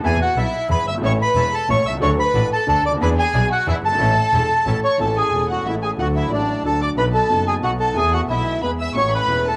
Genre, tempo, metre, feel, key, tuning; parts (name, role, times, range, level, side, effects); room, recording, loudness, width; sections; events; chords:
tango; 182 BPM; 3/4; rubato; A major; A4 = 439 Hz
warm studio violin section; second line; 0.0-9.6 s; E4 to E6; -26 LUFS; equal; cassette tape
bright upright piano; accompaniment; 0.0-9.6 s; E1 to A4; -28 LUFS; equal; cassette tape
bandoneon; stabs; 0.0-9.6 s; B3 to A4; -36 LUFS; equal
dark double bass; bass; 0.0-9.6 s; E1 to E2; -25 LUFS; equal
bandoneon; melody; 0.1-9.6 s; D4 to E6; -22 LUFS; equal; cassette tape
moderate spring reverb, RT60 1.7 s, small room ambience; home recording on cassette; -19 LUFS; mono
0.0-5.0 A section; 5.0-9.6 A section
0.0 Esus4; 0.7 E; 1.0 A; 2.0 D; 3.0 E7; 4.0 A; 6.0 D; 7.0 B7; 8.0 Esus4; 8.6 E; 9.0 A